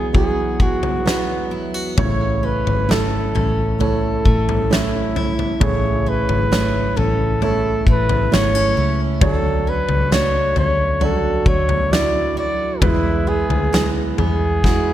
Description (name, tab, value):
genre	pop ballad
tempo	66 BPM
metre	4/4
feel	straight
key	A major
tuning	A4 = 440 Hz
part	warm flugelhorn	melody	0.0-14.9 s	E4 to D5	-22 LUFS	equal	none
part	warm grand piano	accompaniment	0.0-14.9 s	C#3 to C#5	-23 LUFS	right 7 dB	none
part	picked steel-string acoustic guitar	arpeggios	0.0-14.9 s	E2 to F#4	-28 LUFS	left 3 dB	tape echo
part	huge arena drum kit	drums	0.1-14.9 s	kick drum, snare drum, toms	-20 LUFS	left 1 dB	none
part	vintage muted fingered electric bass	bass	2.0-14.9 s	G#1 to E2	-22 LUFS	left 1 dB	none
room	light reverb, small room ambience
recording	none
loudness	-16 LUFS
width	side -12 dB against mid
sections	0.0-14.9 A section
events	drum fill 14.6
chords	0.0 Eadd9; 2.0 A; 9.2 Dmaj7; 12.8 E